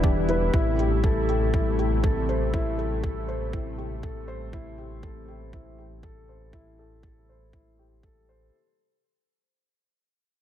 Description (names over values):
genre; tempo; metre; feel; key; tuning
piano and strings electronica; 120 BPM; 4/4; straight; unclear; A4 = 439 Hz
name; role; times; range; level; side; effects
lush unison pad; sustained chords; 0.0-8.5 s; C3 to E4; -32 LUFS; equal; chorus, sidechain pumping
dark grand piano; riff; 0.0-8.6 s; D4 to C5; -30 LUFS; left 3 dB; digital delay
round analog bass; bass; 0.0-8.5 s; E1 to A1; -29 LUFS; equal; tube saturation, sidechain pumping
electronic kick drum; drums; 0.0-8.1 s; none; -26 LUFS; equal; none
electronic hi-hat; drums; 0.3-8.4 s; none; -50 LUFS; equal; low-pass filter on hats, low-pass filter on room
room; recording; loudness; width
light reverb, digital ambience; dark, warm production; -23 LUFS; side -11 dB against mid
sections
0.0-8.5 A section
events
fade-out 0.0-8.5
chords
0.0 Em7; 0.5 Am7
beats
0.04 | 0.54 1.03 1.53 2.04 | 2.54 3.04 3.54 4.04 | 4.54 5.04 5.54 6.04 | 6.54 7.04 7.54 8.04